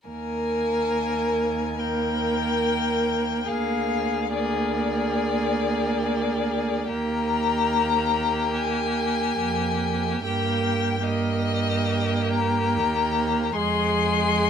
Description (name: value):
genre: classical, slow romantic movement for string quartet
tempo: 72 BPM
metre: 4/4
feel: rubato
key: Eb major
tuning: A4 = 441 Hz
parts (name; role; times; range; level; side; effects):
- warm violin; melody; 0.1-14.5 s; D5 to C6; -27 LUFS; left 8 dB; none
- warm violin; second line; 0.1-14.5 s; G4 to Bb4; -28 LUFS; left 2 dB; none
- clear viola; accompaniment; 0.1-14.5 s; Ab3 to Bb3; -27 LUFS; right 3 dB; none
- rich cello; bass; 0.1-14.5 s; D2 to G2; -29 LUFS; right 5 dB; none
room: moderate studio reverb, RT60 0.6 s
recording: minimal, uncompressed stereo recording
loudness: -22 LUFS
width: side -8 dB against mid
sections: 0.1-14.5 A section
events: none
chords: 0.1 Eb; 3.5 Bb7/D; 6.9 Eb; 10.2 Eb/G; 13.6 Ddim/F (rootless)